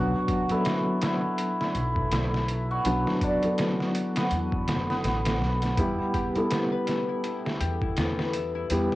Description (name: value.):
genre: trip hop.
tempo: 82 BPM.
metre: 4/4.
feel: swing 58% on 16ths.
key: unclear.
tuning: A4 = 441 Hz.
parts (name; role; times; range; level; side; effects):
cimbalom; melody; 0.0-9.0 s; B3 to F#4; -30 LUFS; equal; dub echo.
felt-muted upright piano; accompaniment; 0.0-9.0 s; F#3 to A4; -28 LUFS; equal; tremolo, vintage 12-bit sampler grit, cassette tape, tape echo.
upright bass; bass; 0.0-8.9 s; F#1 to E2; -30 LUFS; equal; none.
trip hop sampler-style drum kit; drums; 0.3-9.0 s; hi-hat, kick drum, snare drum; -30 LUFS; equal; overdrive, cassette tape.
concert harp; arpeggios; 5.8-9.0 s; B3 to E5; -34 LUFS; left 6 dB; cassette tape, dub echo.
room: small room ambience.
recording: home recording on cassette.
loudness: -24 LUFS.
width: side -17 dB against mid.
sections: 0.0-9.0 A section.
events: none.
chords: 0.0 Bm; 5.8 Em.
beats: 0.65 1.38 2.11 | 2.85 3.58 4.31 5.04 | 5.77 6.50 7.24 7.97 | 8.70.